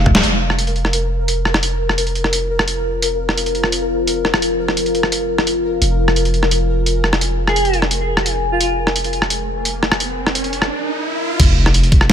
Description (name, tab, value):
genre	half-time drum and bass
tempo	172 BPM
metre	4/4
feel	half-time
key	F minor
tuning	A4 = 439 Hz
part	long sustained 808-style bass	bass	0.0-12.1 s	F1	-20 LUFS	equal	none
part	pulsing gated texture	texture	0.0-10.7 s	Bb4 to F5	-24 LUFS	left 2 dB	chorus, built-in reverb
part	boom bap sampler-style drum kit	drums	0.1-12.1 s	crash cymbal, hi-hat, rim click, snare drum, toms	-17 LUFS	equal	none
part	electronic kick drum	drums	0.1, 11.4-12.0 s	none	-13 LUFS	equal	none
part	deep dark ambient pad	sustained chords	2.4-12.1 s	F4 to Ab5	-23 LUFS	left 2 dB	chorus, built-in reverb, sidechain pumping
part	airy dreamy lead	melody	7.5-8.7 s	F4 to Ab4	-21 LUFS	right 1 dB	chorus, cassette tape, tape echo
part	riser and sub drop	sound effects	9.3-12.1 s	none	-22 LUFS	right 1 dB	none
room	light reverb, digital ambience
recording	none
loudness	-15 LUFS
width	side -9 dB against mid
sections	0.2-11.4 A section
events	drum fill 0.0; band accent 0.1; filter sweep on ambient pad 0.2-11.4; riser 9.3-11.4; impact 11.4-12.1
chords	0.2 Fm; 11.4 F5